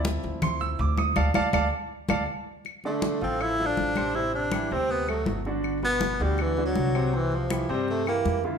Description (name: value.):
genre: Afro-Cuban jazz.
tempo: 161 BPM.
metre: 4/4.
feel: straight.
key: D minor.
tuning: A4 = 440 Hz.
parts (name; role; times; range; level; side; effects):
clear concert grand piano; accompaniment; 0.0-8.6 s; B2 to E6; -29 LUFS; right 2 dB; none.
upright bass; bass; 0.0-8.6 s; G1 to G2; -30 LUFS; equal; none.
congas; percussion; 0.0-8.6 s; none; -32 LUFS; left 2 dB; none.
claves; percussion; 0.4-8.3 s; none; -36 LUFS; left 8 dB; none.
clear tenor saxophone; melody; 2.9-8.4 s; E3 to E4; -27 LUFS; equal; none.
room: wet large studio reverb, RT60 1.2 s.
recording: band playing live in one room.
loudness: -24 LUFS.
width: side -7 dB against mid.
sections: 0.0-2.7 A section; 2.7-8.6 B section.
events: grand piano solo 0.0-2.7; band accent 1.2-2.7; drum fill 1.9-2.7.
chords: 0.0 Dm9; 2.7 Dm7; 4.2 Am7; 4.9 D7; 5.6 Gmaj7; 7.1 C7.